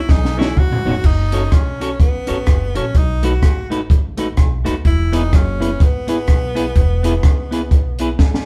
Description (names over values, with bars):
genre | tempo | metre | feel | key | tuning
ska | 126 BPM | 4/4 | swing 59% on 8ths | unclear | A4 = 441 Hz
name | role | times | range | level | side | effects
clear tenor saxophone | melody | 0.0-8.2 s | B3 to F#4 | -27 LUFS | equal | none
upright bass | bass | 0.0-8.4 s | E1 to E2 | -24 LUFS | equal | none
compact cocktail drum kit | drums | 0.1-8.5 s | crash cymbal, hi-hat, kick drum, rim click, snare drum, toms | -17 LUFS | equal | none
clean electric guitar | accompaniment | 0.4-8.1 s | A3 to C#5 | -25 LUFS | equal | none
room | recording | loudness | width
moderate studio reverb, RT60 0.7 s | band playing live in one room | -16 LUFS | mono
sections
0.0-8.5 A section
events
drum fill 0.1-1.0, 8.2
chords
0.0 Badd9; 1.0 F#m; 2.9 B7; 4.9 E